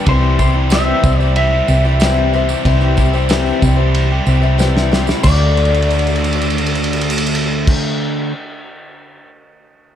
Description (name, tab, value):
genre	folk rock and heartland rock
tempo	93 BPM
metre	4/4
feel	straight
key	D mixolydian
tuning	A4 = 438 Hz
part	picked twelve-string acoustic guitar	accompaniment	0.0-8.4 s	C3 to D5	-21 LUFS	left 9 dB	none
part	biting overdriven guitar	riff	0.0-8.3 s	C3 to G4	-20 LUFS	right 1 dB	none
part	clean lap steel guitar	melody	0.1-7.8 s	C5 to E5	-22 LUFS	equal	digital delay
part	hollow-body short-scale fingered electric bass	bass	0.1-7.8 s	C2 to D2	-15 LUFS	equal	none
part	cloth-damped thuddy drum kit	drums	0.1-9.3 s	crash cymbal, kick drum, ride cymbal, snare drum	-19 LUFS	equal	none
part	tambourine	percussion	0.4-7.8 s	none	-33 LUFS	right 9 dB	none
room	small room ambience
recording	dark, warm production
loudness	-12 LUFS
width	side -10 dB against mid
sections	0.0-5.2 A section; 5.2-7.8 B section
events	drum fill 4.6-5.2, 5.6-7.7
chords	0.1 C; 5.2 D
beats	| 0.07 0.71 1.36 2.01 | 2.65 3.30 3.95 4.59 | 5.24 5.89 6.54 7.18